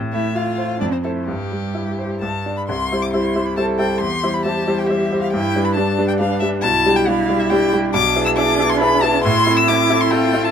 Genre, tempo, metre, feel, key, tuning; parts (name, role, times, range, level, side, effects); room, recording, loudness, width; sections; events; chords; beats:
quick classical-period movement for piano trio; 137 BPM; 3/4; rubato; C major; A4 = 442 Hz
bright concert grand piano; accompaniment; 0.0-10.5 s; B1 to D5; -18 LUFS; left 1 dB
rich violin; melody; 0.1-10.5 s; G4 to E6; -21 LUFS; left 4 dB
rich cello; second line; 0.1-10.5 s; G3 to A4; -22 LUFS; right 7 dB
light reverb; -16 LUFS; side -8 dB against mid
0.0-2.7 A section; 2.7-10.5 B section
0.0 F/A; 0.8 Fmaj7; 1.3 C/G; 2.2 G5; 2.7 C; 4.0 C/E; 5.3 G; 6.6 G/B; 7.9 E7/B; 9.2 Am
0.34 0.80 | 1.27 1.74 2.21 | 2.68 3.13 3.57 | 4.01 4.46 4.90 | 5.34 5.77 6.20 | 6.63 7.07 7.50 | 7.93 8.37 8.80 | 9.24 9.68 10.12